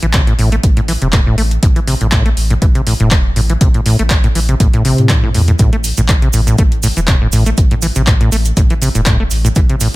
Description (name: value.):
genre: acid house.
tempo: 121 BPM.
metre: 4/4.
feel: swing 54% on 16ths.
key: A minor pentatonic.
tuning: A4 = 445 Hz.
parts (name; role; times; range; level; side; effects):
acid bass, saw; riff; 0.0-9.9 s; A2 to A3; -15 LUFS; equal; tube saturation, digital delay.
saturated sub bass; bass; 0.0-9.9 s; E1 to A2; -16 LUFS; equal; sidechain pumping.
booming analog drum machine; drums; 0.0-9.9 s; handclaps, hi-hat; -20 LUFS; equal; none.
electronic kick drum; drums; 0.1-9.7 s; none; -13 LUFS; equal; none.
cabasa; percussion; 5.6-9.9 s; none; -23 LUFS; right 8 dB; none.
room: digital ambience.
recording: none.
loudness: -10 LUFS.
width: side -19 dB against mid.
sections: 0.0-10.0 A section.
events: none.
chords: 0.0 A5.